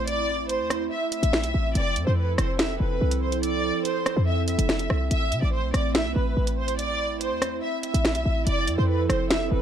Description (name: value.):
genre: hip hop, drill.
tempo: 143 BPM.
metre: 4/4.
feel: half-time.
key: A minor.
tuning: A4 = 440 Hz.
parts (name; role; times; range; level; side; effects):
warm symphonic violin section; melody; 0.0-9.6 s; B4 to E5; -28 LUFS; equal; ping-pong delay.
warbly tape-like pad; sustained chords; 0.0-9.6 s; F3 to A4; -30 LUFS; right 5 dB; chorus, built-in reverb.
short 808-style bass; bass; 0.0-9.6 s; F1 to C3; -25 LUFS; equal; none.
drill drum kit; drums; 0.1-9.4 s; finger snaps, hi-hat, rim click, snare drum; -26 LUFS; equal; none.
room: little or no reverb.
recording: dark, warm production.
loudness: -22 LUFS.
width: side -9 dB against mid.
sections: 0.0-9.6 A section.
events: none.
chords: 0.0 Am; 1.8 Fmaj7; 5.1 Am; 8.5 Fmaj7.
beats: | 0.07 0.49 0.91 1.33 | 1.75 2.17 2.59 3.01 | 3.43 3.85 4.27 4.69 | 5.11 5.53 5.95 6.37 | 6.79 7.21 7.63 8.05 | 8.47 8.89 9.30.